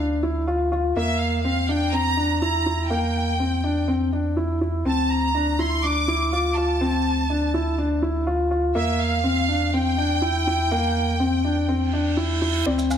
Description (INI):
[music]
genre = piano and strings electronica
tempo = 123 BPM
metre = 4/4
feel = straight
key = unclear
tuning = A4 = 440 Hz
[part]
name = dark upright piano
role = riff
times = 0.0-13.0 s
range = Bb3 to F4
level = -23 LUFS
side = left 2 dB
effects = ping-pong delay
[part]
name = warm sub bass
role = bass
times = 0.0-13.0 s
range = D2 to E2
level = -25 LUFS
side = right 1 dB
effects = none
[part]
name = clear studio violin section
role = melody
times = 1.0-12.2 s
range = E5 to D6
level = -25 LUFS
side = right 1 dB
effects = none
[part]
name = reverse cymbal and riser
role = sound effects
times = 11.9-13.0 s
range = none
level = -29 LUFS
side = right 5 dB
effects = none
[part]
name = warbly dusty pluck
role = arpeggios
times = 12.7-12.9 s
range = D5 to F5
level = -30 LUFS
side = left 2 dB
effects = chorus
[part]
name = shaker and woodblock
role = drums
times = 12.8-13.0 s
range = none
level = -30 LUFS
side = right 4 dB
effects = low-pass filter on perc, low-pass filter on room
[sound]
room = moderate echo chamber reverb, RT60 1.7 s, small room ambience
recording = none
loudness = -20 LUFS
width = side -8 dB against mid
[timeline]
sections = 0.0-12.7 A section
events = reverse cymbal 11.9-12.7; riser 12.7-13.0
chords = 0.0 Dmadd9; 1.0 Edim; 4.9 Dmadd9; 8.8 Edim